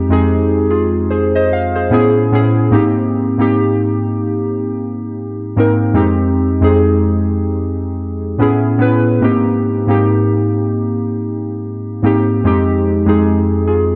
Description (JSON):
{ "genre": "hip hop", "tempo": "74 BPM", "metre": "4/4", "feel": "swing 59% on 16ths", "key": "Ab major", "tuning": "A4 = 443 Hz", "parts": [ { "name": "warbly lo-fi synth keys", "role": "solo", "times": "0.0-14.0 s", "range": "F2 to F5", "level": "-15 LUFS", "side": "equal", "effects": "chorus, cassette tape, low-pass filter" } ], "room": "light reverb", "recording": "cassette tape", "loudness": "-15 LUFS", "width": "mono", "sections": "0.0-14.0 A section", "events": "none", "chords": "0.0 Fm7; 1.9 Amaj7; 2.7 Abmaj7; 6.0 Fm7; 8.4 Amaj7; 9.2 Abmaj7; 12.4 Fm7" }